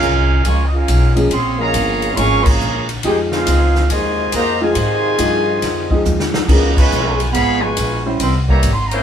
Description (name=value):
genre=jazz, big band swing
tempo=139 BPM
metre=4/4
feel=swing 66% on 8ths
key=F minor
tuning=A4 = 439 Hz
part: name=warm trumpet section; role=melody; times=0.0-9.0 s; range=Db4 to Db6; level=-20 LUFS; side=right 2 dB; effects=none
part: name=clear trombone section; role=second line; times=0.0-8.7 s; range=Cb3 to Ab4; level=-21 LUFS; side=right 1 dB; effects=none
part: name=warm trombone section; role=sustained chords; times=0.0-9.0 s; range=Ab3 to C5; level=-25 LUFS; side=left 1 dB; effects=none
part: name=upright bass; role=bass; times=0.0-9.0 s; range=G1 to Ab2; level=-18 LUFS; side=equal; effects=none
part: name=swinging big-band drum kit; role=drums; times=0.0-9.0 s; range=crash cymbal, hi-hat, kick drum, ride cymbal, snare drum, toms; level=-20 LUFS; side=equal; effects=none
part: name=clear upright piano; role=accompaniment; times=1.2-8.2 s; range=Eb3 to C5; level=-20 LUFS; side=left 1 dB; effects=none
room=wet small room reverb, RT60 0.5 s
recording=band playing live in one room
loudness=-13 LUFS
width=side -9 dB against mid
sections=0.0-9.0 A section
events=band accent 2.4, 6.7; drum fill 6.1-6.5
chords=0.0 Bbm7; 3.0 Fm7; 6.5 Db7; 8.2 C7b9